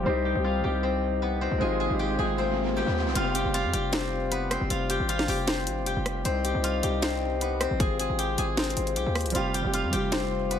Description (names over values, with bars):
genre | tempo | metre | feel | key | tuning
hip hop, trap | 155 BPM | 4/4 | half-time | unclear | A4 = 441 Hz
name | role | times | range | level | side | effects
steel-string zither | melody | 0.0-10.6 s | B3 to Ab5 | -29 LUFS | left 4 dB | low-pass filter
warm concert grand piano | accompaniment | 0.0-3.2, 9.3-10.6 s | G3 to G4 | -31 LUFS | right 3 dB | low-pass filter
pedal harmonium | sustained chords | 0.0-10.6 s | C3 to F4 | -34 LUFS | left 2 dB | low-pass filter
hard-hitting 808-style bass | bass | 0.0-10.6 s | F1 to F2 | -30 LUFS | equal | none
riser | sound effects | 1.2-3.2 s | none | -35 LUFS | right 3 dB | none
trap drum kit | drums | 3.2-10.6 s | hi-hat, kick drum, rim click, snare drum | -30 LUFS | equal | overdrive
room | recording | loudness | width
light reverb, small room reverb | none | -24 LUFS | side -9 dB against mid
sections
0.0-3.2 A section; 3.2-10.6 B section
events
riser 1.2-3.2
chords
0.1 Cm; 1.6 Ab6; 3.2 Fsus2; 6.3 Ab6; 9.3 Fsus2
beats
| 0.06 0.45 0.83 1.22 | 1.61 1.99 2.38 2.77 | 3.15 3.54 3.93 4.32 | 4.70 5.09 5.48 5.86 | 6.25 6.64 7.03 7.41 | 7.80 8.19 8.57 8.96 | 9.35 9.73 10.12 10.51